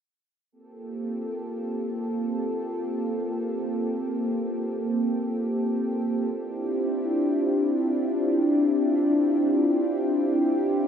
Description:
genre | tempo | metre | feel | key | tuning
drum and bass | free time | none | none | G minor | A4 = 438 Hz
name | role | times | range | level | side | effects
lush unison pad | sustained chords | 0.5-10.9 s | Bb3 to A4 | -23 LUFS | equal | chorus
room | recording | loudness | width
wet spring reverb, RT60 2.1 s | none | -23 LUFS | side -8 dB against mid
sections
0.5-10.9 A section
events
none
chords
0.5 Gm11; 6.3 Dm11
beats
free time

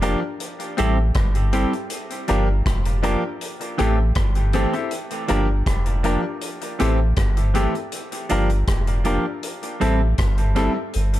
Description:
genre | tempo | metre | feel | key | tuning
dub reggae | 80 BPM | 4/4 | straight | unclear | A4 = 440 Hz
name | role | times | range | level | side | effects
semi-hollow electric guitar | accompaniment | 0.0-10.8 s | E3 to A4 | -26 LUFS | right 5 dB | low-pass filter, dub echo
bright grand piano | stabs | 0.0-10.7 s | C4 to Bb4 | -26 LUFS | left 6 dB | low-pass filter, dub echo
warm sub bass | bass | 0.0-11.2 s | F1 to A1 | -20 LUFS | equal | none
vintage drum kit | drums | 0.0-11.2 s | hi-hat, kick drum, rim click | -27 LUFS | equal | none
room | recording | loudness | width
light reverb, small room ambience | echo-heavy mix | -19 LUFS | side -14 dB against mid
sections
0.0-10.9 A section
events
none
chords
0.4 Am7; 1.9 Gm7; 3.4 Am7; 4.9 Gm7; 6.4 Am7; 7.9 Gm7; 9.4 Am7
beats
0.40 1.16 | 1.91 2.66 3.41 4.16 | 4.92 5.67 6.42 7.18 | 7.93 8.68 9.44 10.19 | 10.94

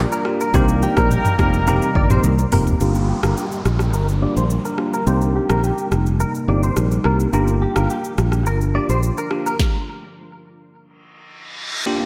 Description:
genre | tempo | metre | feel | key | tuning
afrobeats | 106 BPM | 4/4 | straight | G minor | A4 = 438 Hz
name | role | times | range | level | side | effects
warm horn section | second line | 0.0-2.5 s | G3 to Bb4 | -27 LUFS | equal | none
bell-like tine electric piano | accompaniment | 0.0-12.1 s | Bb3 to G4 | -26 LUFS | equal | subtle chorus, low-pass filter
deep dark ambient pad | sustained chords | 0.0-12.1 s | C3 to Bb4 | -28 LUFS | equal | chorus, built-in reverb, low-pass filter
fingered electric bass | bass | 0.0-9.1 s | F1 to C2 | -21 LUFS | equal | none
direct-recorded clean electric guitar | riff | 0.1-9.6 s | G4 to D5 | -28 LUFS | equal | ensemble chorus, low-pass filter, tape echo
afro-pop drum kit | drums | 0.1-9.7 s | hi-hat, kick drum, rim click, shaker, snare drum, toms | -25 LUFS | equal | none
congas | percussion | 0.5-2.4 s | none | -30 LUFS | equal | none
downlifter and reverse cymbal | sound effects | 2.8-12.1 s | none | -33 LUFS | equal | none
room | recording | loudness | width
moderate lush hall reverb, RT60 2.0 s, digital ambience | dreamy mix soaked in reverb | -19 LUFS | mono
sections
0.0-2.8 A section; 2.8-11.9 B section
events
drum fill 2.2-2.8; filter sweep 2.8-11.9; stop 9.6-11.9; reverse cymbal 11.3-11.9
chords
0.0 Gm7; 0.5 Cm7; 2.8 Gm7; 5.1 Cm7; 7.3 Gm7; 9.6 N.C.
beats
| 0.54 1.11 1.67 2.24 | 2.80 3.37 3.94 4.50 | 5.07 5.63 6.20 6.77 | 7.33 7.90 8.46 9.03 | 9.60 10.16 10.73 11.29 | 11.86

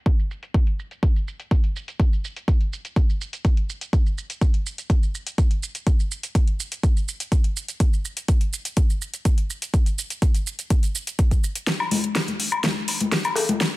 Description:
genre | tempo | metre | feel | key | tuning
house | 124 BPM | 4/4 | straight | none | none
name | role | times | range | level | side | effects
deep house drum kit | drums | 0.1-13.7 s | hi-hat, shaker, snare drum | -27 LUFS | equal | overdrive, low-pass filter on hats, low-pass filter on toms, low-pass filter on perc, low-pass filter on snare
electronic kick drum | drums | 0.1-13.7 s | none | -19 LUFS | equal | high-pass filter on kick
woodblock, congas and cowbell | percussion | 11.8-13.7 s | none | -24 LUFS | left 4 dB | sidechain pumping on perc
room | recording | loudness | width
little or no reverb | none | -20 LUFS | side -19 dB against mid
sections
0.0-11.7 A section; 11.7-13.8 B section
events
build-up 11.7-13.8; drum fill 11.7-13.8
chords
none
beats
| 0.06 0.54 1.03 1.51 | 2.00 2.48 2.96 3.45 | 3.93 4.42 4.90 5.38 | 5.87 6.35 6.83 7.32 | 7.80 8.29 8.77 9.25 | 9.74 10.22 10.71 11.19 | 11.67 12.16 12.64 13.12 | 13.61

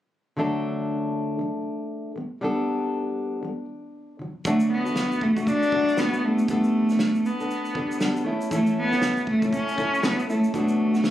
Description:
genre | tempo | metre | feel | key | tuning
acoustic pop | 118 BPM | 4/4 | swing 60% on 16ths | D major | A4 = 441 Hz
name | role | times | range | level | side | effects
fingerpicked plugged-in steel-string acoustic guitar | accompaniment | 0.4-11.1 s | A2 to A4 | -27 LUFS | left 1 dB | none
warm cello | melody | 4.5-11.1 s | A3 to D4 | -22 LUFS | equal | none
natural country drum kit | drums | 4.5-11.1 s | kick drum, shaker, snare drum | -32 LUFS | right 2 dB | none
room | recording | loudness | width
moderate studio reverb, RT60 0.5 s | recorded on a phone in the room, club reverb, compression | -22 LUFS | side -12 dB against mid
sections
0.4-4.5 A section; 4.5-11.1 B section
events
none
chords
0.4 D; 2.2 Gadd9; 4.2 D; 6.2 Gadd9; 8.3 A; 10.5 Bm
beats
| 0.37 0.88 1.39 1.90 | 2.41 2.92 3.43 3.94 | 4.45 4.96 5.47 5.97 | 6.48 6.99 7.50 8.00 | 8.51 9.02 9.52 10.03 | 10.54 11.04

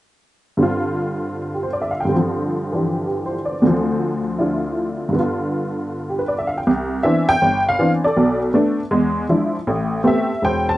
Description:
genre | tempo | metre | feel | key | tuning
solo jazz | 159 BPM | 4/4 | swing 63% on 8ths | unclear | A4 = 440 Hz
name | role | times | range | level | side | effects
honky-tonk upright piano | solo | 0.6-10.8 s | E1 to A5 | -17 LUFS | equal | none
room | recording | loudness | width
light reverb | dark, warm production, nothing above 10.8 kHz | -17 LUFS | side -16 dB against mid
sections
0.6-6.7 A section; 6.7-10.8 B section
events
none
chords
0.6 G7sus4; 3.6 Dm7; 5.1 G7; 6.7 Cmaj9; 8.2 Bm7; 8.9 E7b9; 9.7 Am9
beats
| 0.59 0.97 1.35 1.73 | 2.11 2.49 2.87 3.25 | 3.63 4.01 4.39 4.77 | 5.14 5.52 5.90 6.28 | 6.66 7.03 7.41 7.79 | 8.16 8.54 8.92 9.29 | 9.67 10.05 10.42

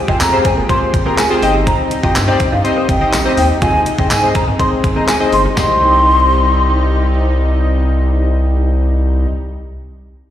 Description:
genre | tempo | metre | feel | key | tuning
dance-pop | 123 BPM | 4/4 | straight | C minor | A4 = 442 Hz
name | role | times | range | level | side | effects
lush unison pad | sustained chords | 0.0-9.3 s | C3 to G4 | -23 LUFS | right 1 dB | chorus, sidechain pumping
mellow hollow concert flute | melody | 0.1-7.0 s | F5 to C6 | -16 LUFS | equal | slapback echo, ping-pong delay
chorused retro synth keys | accompaniment | 0.1-9.3 s | C4 to Eb5 | -18 LUFS | left 2 dB | sidechain pumping, slapback echo
direct-recorded clean electric guitar | riff | 0.1-5.7 s | G3 to F4 | -26 LUFS | right 4 dB | ensemble chorus, slapback echo
round analog bass | bass | 0.1-9.3 s | F1 to Ab2 | -15 LUFS | equal | sidechain pumping
clean 12-bit digital drum machine | drums | 0.1-5.7 s | handclaps, hi-hat, kick drum, snare drum | -18 LUFS | equal | overdrive
tambourine | percussion | 0.2-5.8 s | none | -27 LUFS | left 3 dB | none
room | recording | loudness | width
digital ambience | live gig heard through the venue's PA, recital hall reverb | -11 LUFS | side -11 dB against mid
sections
0.0-5.6 A section; 5.6-9.5 B section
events
drop 0.0-5.6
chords
0.0 Fmadd9; 1.4 Cm/G; 3.6 Ab; 5.6 Cm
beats
0.20 0.69 1.18 | 1.67 2.16 2.64 3.13 | 3.62 4.11 4.60 5.08 | 5.57 6.06 6.55 7.04 | 7.52 8.01 8.50 8.99

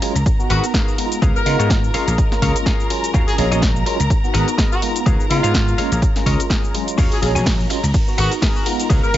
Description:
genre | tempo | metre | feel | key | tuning
filtered disco house | 125 BPM | 4/4 | swing 56% on 16ths | Eb minor | A4 = 440 Hz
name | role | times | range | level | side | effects
tine electric piano | accompaniment | 0.0-9.2 s | Gb3 to F5 | -24 LUFS | right 1 dB | medium stereo tremolo, phaser, sidechain pumping
rich studio violin section | sustained chords | 0.0-9.2 s | Bb4 to Bb5 | -27 LUFS | equal | sidechain pumping
semi-hollow electric guitar | riff | 0.0-9.1 s | Gb4 to Ab5 | -27 LUFS | left 3 dB | analog chorus, sidechain pumping
house drum kit | drums | 0.0-9.2 s | hi-hat, ride cymbal, shaker, snare drum | -24 LUFS | equal | sidechain pumping on perc, sidechain pumping on hats, sidechain pumping on cymbals
vintage slap bass | bass | 0.2-9.2 s | Ab1 to Db3 | -20 LUFS | equal | sidechain pumping
electronic kick drum | drums | 0.3-9.0 s | none | -18 LUFS | equal | none
warm horn section | melody | 0.5-9.2 s | F4 to Bb4 | -25 LUFS | left 1 dB | sidechain pumping, digital delay
tambourine | percussion | 7.0-9.2 s | none | -33 LUFS | right 4 dB | sidechain pumping on perc
room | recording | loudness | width
digital ambience | nothing above 7.7 kHz | -15 LUFS | side -13 dB against mid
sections
0.0-9.2 A section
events
clean electric guitar fill 1.7-3.1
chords
0.3 Abm9; 1.2 Db7; 1.9 Bbm7; 4.1 Abm9; 5.1 Db7; 5.8 Ebm11 (rootless); 7.9 Abm9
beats
0.26 0.74 | 1.22 1.70 2.18 2.66 | 3.14 3.62 4.10 4.58 | 5.06 5.54 6.02 6.50 | 6.98 7.46 7.94 8.42 | 8.90

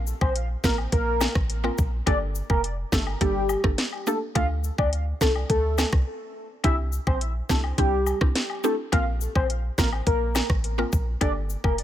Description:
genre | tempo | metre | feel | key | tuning
dancehall | 105 BPM | 4/4 | straight | unclear | A4 = 441 Hz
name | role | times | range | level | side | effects
mallet-like synth pluck | accompaniment | 0.0-11.8 s | A3 to Bb4 | -30 LUFS | right 1 dB | chorus, sidechain pumping
clean 808-style bass | bass | 0.0-11.8 s | F1 to D2 | -27 LUFS | equal | none
cabasa and woodblock | percussion | 0.1-11.8 s | none | -36 LUFS | left 7 dB | none
warm velvety synth lead | melody | 0.2-11.8 s | G4 to F5 | -28 LUFS | left 1 dB | chorus, tremolo, digital delay
island pop drum kit | drums | 0.2-11.8 s | hi-hat, kick drum, rim click, snare drum | -24 LUFS | equal | none
room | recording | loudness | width
little or no reverb | none | -22 LUFS | side -12 dB against mid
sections
0.0-11.8 A section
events
break 6.1-6.6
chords
0.0 Bbsus2; 2.1 Gmadd9; 4.4 Dm; 6.6 Cadd9; 8.9 Bbsus2; 11.2 Gmadd9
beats
0.35 0.93 1.50 | 2.07 2.64 3.21 3.78 | 4.36 4.93 5.50 6.07 | 6.64 7.21 7.78 8.36 | 8.93 9.50 10.07 10.64 | 11.21 11.78

